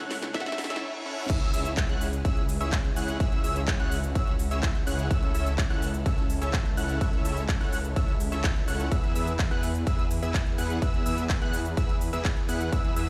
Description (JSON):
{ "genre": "EDM, festival progressive house", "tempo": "126 BPM", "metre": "4/4", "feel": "straight", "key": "unclear", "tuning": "A4 = 438 Hz", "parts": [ { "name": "glassy wavetable pluck", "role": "melody", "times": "0.0-0.8 s", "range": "E5 to F#5", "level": "-41 LUFS", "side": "equal", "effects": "chorus, delay" }, { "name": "clear concert grand piano", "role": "accompaniment", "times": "0.0-1.3 s", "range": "A3 to C#5", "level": "-48 LUFS", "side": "equal", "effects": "none" }, { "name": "lush unison pad", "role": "sustained chords", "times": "0.0-13.1 s", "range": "C#3 to B4", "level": "-43 LUFS", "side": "equal", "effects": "none" }, { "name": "plucky unison lead", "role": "arpeggios", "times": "0.0-13.1 s", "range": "E6 to F#6", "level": "-39 LUFS", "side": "equal", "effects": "sidechain pumping, delay" }, { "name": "dense compressed supersaw", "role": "riff", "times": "0.0-13.1 s", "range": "B3 to F#5", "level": "-37 LUFS", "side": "equal", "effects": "cassette tape, sidechain pumping, delay" }, { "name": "detuned saw bass", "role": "bass", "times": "0.0-13.1 s", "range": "C#2 to E2", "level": "-34 LUFS", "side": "equal", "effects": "chorus, sidechain pumping" }, { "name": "riser, reverse cymbal and impact", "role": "sound effects", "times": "0.6-3.2 s", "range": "none", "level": "-43 LUFS", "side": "equal", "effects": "none" }, { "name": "house drum kit", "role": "drums", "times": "0.1-13.1 s", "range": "cabasa, crash cymbal, handclaps, hi-hat, ride cymbal, snare drum", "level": "-39 LUFS", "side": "equal", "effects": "none" }, { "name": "electronic kick drum", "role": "drums", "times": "0.3-12.8 s", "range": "none", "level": "-29 LUFS", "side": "equal", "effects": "none" } ], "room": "light reverb, digital ambience", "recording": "played on a big sound system in a bare room, stone room reverb, high-pass filter", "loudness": "-27 LUFS", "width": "mono", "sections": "0.0-1.3 A section; 1.3-13.1 B section", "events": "build-up 0.0-1.3; drum fill 0.0-0.8; riser 0.6-1.3; reverse cymbal 0.6-1.3; drop 1.3-13.1; impact 1.3-3.2", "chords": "0.0 A/C#; 1.3 C#m; 5.1 A/C#; 8.9 E" }